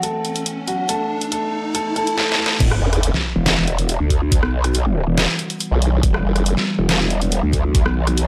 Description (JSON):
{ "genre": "heavy wobble dubstep", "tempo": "140 BPM", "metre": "4/4", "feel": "half-time", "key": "E minor", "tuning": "A4 = 441 Hz", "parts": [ { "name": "dark grand piano", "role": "melody", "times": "0.0-2.6 s", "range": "F#3 to A4", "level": "-25 LUFS", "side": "equal", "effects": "delay" }, { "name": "evolving wavetable pad", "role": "sustained chords", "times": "0.0-8.3 s", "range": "E3 to F#5", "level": "-31 LUFS", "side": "equal", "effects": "phaser, built-in reverb, sidechain pumping" }, { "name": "dubstep drum kit", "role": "drums", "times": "0.0-8.3 s", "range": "crash cymbal, hi-hat, rim click, snare drum", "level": "-23 LUFS", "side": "equal", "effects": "high-pass filter on hats, high-pass filter on snare, high-pass filter on cymbals, high-pass filter on room" }, { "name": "riser and sub drop", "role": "sound effects", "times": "0.0-4.3 s", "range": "none", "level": "-29 LUFS", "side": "equal", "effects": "none" }, { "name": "growl bass", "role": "bass", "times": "2.6-8.3 s", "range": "E1 to D2", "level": "-21 LUFS", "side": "equal", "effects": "chorus, overdrive" }, { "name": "electronic kick drum", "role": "drums", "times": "2.6-7.8 s", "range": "none", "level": "-20 LUFS", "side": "equal", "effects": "none" }, { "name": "formant-sweep wobble bass", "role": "bass", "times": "2.8-3.1, 5.7-6.6 s", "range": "F#1 to B1", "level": "-20 LUFS", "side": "equal", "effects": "chorus, overdrive" } ], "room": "light reverb", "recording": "lossy compression artefacts", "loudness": "-19 LUFS", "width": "mono", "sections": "0.0-2.6 A section; 2.6-8.3 B section", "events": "build-up 0.0-2.6; riser 0.0-2.2; filter sweep on ambient pad 0.0-2.6; filter sweep on grand piano 0.0-2.6; drum fill 2.2-2.6; drop 2.6-8.3; impact 2.6-4.3", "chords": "0.0 Esus2; 2.6 Emadd9" }